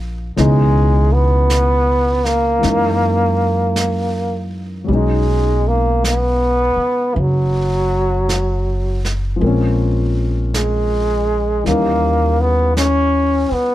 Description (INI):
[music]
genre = jazz ballad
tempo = 53 BPM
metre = 4/4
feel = swing 66% on 8ths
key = unclear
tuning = A4 = 440 Hz
[part]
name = warm grand piano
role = accompaniment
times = 0.0-13.7 s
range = B2 to A#4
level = -22 LUFS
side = left 3 dB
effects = none
[part]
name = upright bass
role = bass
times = 0.0-13.5 s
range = F#1 to F#2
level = -18 LUFS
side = equal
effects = none
[part]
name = bright trombone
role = melody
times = 0.4-13.7 s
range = E3 to C#4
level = -17 LUFS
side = right 1 dB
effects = none
[part]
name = jazz brush drum kit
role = drums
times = 0.4-13.7 s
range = brushed snare drum, hi-hat, snare drum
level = -28 LUFS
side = right 2 dB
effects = none
[sound]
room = little or no reverb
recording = close, detailed microphones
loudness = -14 LUFS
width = side -14 dB against mid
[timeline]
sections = 0.0-13.7 A section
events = none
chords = 0.4 C#m9; 2.6 F#13; 4.9 B69; 9.4 A#m7; 11.7 D#7b9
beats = | 0.35 1.48 2.61 3.75 | 4.88 6.02 7.15 8.28 | 9.41 10.54 11.66 12.77